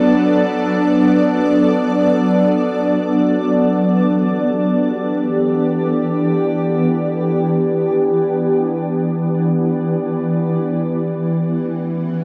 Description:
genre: ambient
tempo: free time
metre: none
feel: none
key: unclear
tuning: A4 = 441 Hz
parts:
  - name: shimmering ambient pad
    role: solo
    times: 0.0-12.2 s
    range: E3 to D5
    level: -17 LUFS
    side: equal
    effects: chorus, built-in reverb, delay
room: wet plate reverb, RT60 2.5 s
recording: dreamy mix soaked in reverb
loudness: -17 LUFS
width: mono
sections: 0.0-12.2 A section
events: none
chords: 0.0 Bm7; 3.6 Em7; 10.7 F#m7

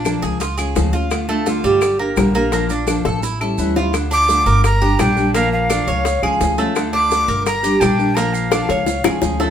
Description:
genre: latin, Cuban son and guajira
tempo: 170 BPM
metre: 4/4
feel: straight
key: D harmonic minor from 3.9 s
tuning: A4 = 441 Hz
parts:
  - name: nylon-string guitar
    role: accompaniment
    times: 0.0-9.5 s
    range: C#3 to G4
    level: -21 LUFS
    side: left 1 dB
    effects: none
  - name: Cuban tres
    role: arpeggios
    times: 0.0-9.5 s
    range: G3 to C#5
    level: -21 LUFS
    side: right 2 dB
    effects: none
  - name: upright bass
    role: bass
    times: 0.0-9.5 s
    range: G1 to D2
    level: -22 LUFS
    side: equal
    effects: none
  - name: bongos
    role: percussion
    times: 0.1-9.5 s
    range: none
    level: -23 LUFS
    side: left 4 dB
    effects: none
  - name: claves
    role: percussion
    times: 0.1-9.2 s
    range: none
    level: -30 LUFS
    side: left 2 dB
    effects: none
  - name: maracas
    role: percussion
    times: 0.1-9.5 s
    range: none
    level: -31 LUFS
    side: right 5 dB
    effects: none
  - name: breathy bright jazz flute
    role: melody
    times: 4.1-9.4 s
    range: F5 to D6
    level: -18 LUFS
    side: right 1 dB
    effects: none
room: moderate studio reverb, RT60 0.8 s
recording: band playing live in one room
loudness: -14 LUFS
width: side -9 dB against mid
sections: 0.0-3.9 A section; 3.9-9.5 B section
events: drum fill 3.1-3.9, 8.5-9.5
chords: 0.4 C#; 1.1 Dm; 1.8 Gm; 2.5 Bb; 3.2 A7; 3.9 Dm; 4.6 Gm; 5.3 Bb; 6.1 C#; 6.8 Dm; 7.5 Gm; 8.2 Bb; 8.9 C#

